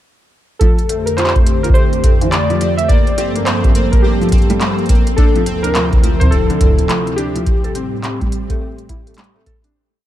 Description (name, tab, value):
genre	IDM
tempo	105 BPM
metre	4/4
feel	swing 62% on 16ths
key	unclear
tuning	A4 = 441 Hz
part	warbly lo-fi synth keys	melody	0.6-9.4 s	G4 to E5	-20 LUFS	right 1 dB	chorus, ping-pong delay
part	warbly tape-like pad	sustained chords	0.9-9.7 s	D2 to A4	-20 LUFS	left 2 dB	chorus, built-in reverb
part	felt-muted upright piano	arpeggios	0.6-9.7 s	C3 to A4	-22 LUFS	equal	tape echo
part	electronic kick drum	drums	0.6-9.6 s	none	-13 LUFS	equal	none
part	organic electronic drum kit	drums	0.6-9.7 s	handclaps, hi-hat	-23 LUFS	equal	overdrive
part	pulsing gated texture	texture	0.9-9.8 s	C4 to C5	-28 LUFS	right 1 dB	chorus, built-in reverb
room	little or no reverb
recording	dark, warm production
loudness	-12 LUFS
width	side -13 dB against mid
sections	0.6-9.8 groove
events	fade-out 6.7-9.8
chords	0.6 F69; 2.9 Gm9; 5.2 Dm9; 7.5 Am7